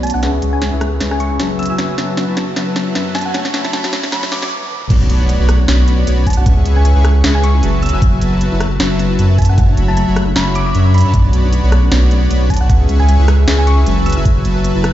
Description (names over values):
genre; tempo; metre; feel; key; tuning
future bass; 154 BPM; 4/4; swing 55% on 16ths, half-time; B dorian; A4 = 440 Hz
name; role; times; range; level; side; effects
thumb-piano-like synth pluck; melody; 0.0-14.2 s; F#5 to E6; -24 LUFS; equal; chorus, sidechain pumping, tape echo
soft round pluck; arpeggios; 0.0-14.9 s; G#3 to B4; -26 LUFS; equal; lush chorus, sidechain pumping, tape echo
soft supersaw; riff; 0.0-14.8 s; F#3 to C#6; -19 LUFS; left 2 dB; sidechain pumping, low-pass filter, tape echo
saturated sub bass; bass; 0.0-14.9 s; F#1 to F#2; -13 LUFS; equal; sidechain pumping
trap drum kit; drums; 0.0-14.9 s; crash cymbal, hi-hat, rim click, snare drum, toms; -21 LUFS; equal; none
riser, swell and impact; sound effects; 1.2-6.5 s; none; -28 LUFS; right 1 dB; none
electronic kick drum; drums; 4.9-14.3 s; none; -12 LUFS; equal; none
room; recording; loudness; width
little or no reverb; played on a big sound system in a bare room, large studio reverb, high-pass filter, nothing above 7.7 kHz; -11 LUFS; side -13 dB against mid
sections
0.0-4.9 A section; 4.9-14.9 B section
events
build-up 0.0-4.9; drum fill 0.0-4.5, 4.6; filter sweep on supersaw synth 0.0-4.9; filter sweep on synth pluck 0.0-4.9; filter sweep on synth arpeggio sound 0.0-4.9; filter sweep 0.0-4.9; riser 1.2-4.5; swell 4.1-4.9; stop 4.5-4.9; drop 4.9-14.9; impact 4.9-6.5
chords
0.2 C#m7; 1.6 F#7sus4; 3.3 Dmaj9/F# (rootless); 4.9 Bm9; 6.5 C#m7; 7.8 F#7sus4; 9.6 Dmaj9/F#; 11.1 Bm9; 12.7 C#m7; 14.1 F#7sus4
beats
| 0.23 0.62 1.01 1.40 | 1.79 2.18 2.57 2.96 | 3.35 3.73 4.12 4.51 | 4.90 5.29 5.68 6.07 | 6.46 6.85 7.24 7.63 | 8.02 8.41 8.80 9.19 | 9.58 9.97 10.36 10.75 | 11.14 11.53 11.92 12.31 | 12.70 13.09 13.47 13.87 | 14.25 14.64